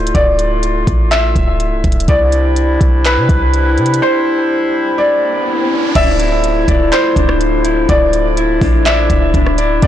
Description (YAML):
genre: hip hop, atmospheric cloud-rap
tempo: 124 BPM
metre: 4/4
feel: half-time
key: D dorian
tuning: A4 = 442 Hz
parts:
  - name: felt-muted upright piano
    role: melody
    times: 0.0-9.9 s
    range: B4 to E5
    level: -17 LUFS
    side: equal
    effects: tape echo
  - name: mellow woodwind section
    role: sustained chords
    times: 0.0-9.9 s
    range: D3 to F4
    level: -17 LUFS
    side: left 2 dB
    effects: sidechain pumping
  - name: clean 808-style bass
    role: bass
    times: 0.0-9.9 s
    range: C1 to C3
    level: -15 LUFS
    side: equal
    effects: tube saturation
  - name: smooth R&B drum kit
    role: drums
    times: 0.1-9.9 s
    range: crash cymbal, handclaps, hi-hat, kick drum, rim click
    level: -16 LUFS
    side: equal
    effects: vintage 12-bit sampler grit
  - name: riser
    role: sound effects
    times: 4.8-6.0 s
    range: none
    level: -23 LUFS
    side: right 2 dB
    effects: none
  - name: electric guitar at the edge of break-up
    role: arpeggios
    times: 6.0-9.9 s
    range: C4 to D5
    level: -17 LUFS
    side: left 3 dB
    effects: tape echo
room: little or no reverb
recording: blown-out, overdriven recording, overdrive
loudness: -11 LUFS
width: side -11 dB against mid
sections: 0.0-6.0 A section; 6.0-9.9 B section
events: break 4.0-6.0; riser 4.8-6.0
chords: 0.0 Dmadd9; 2.1 Cadd9; 6.0 Dmadd9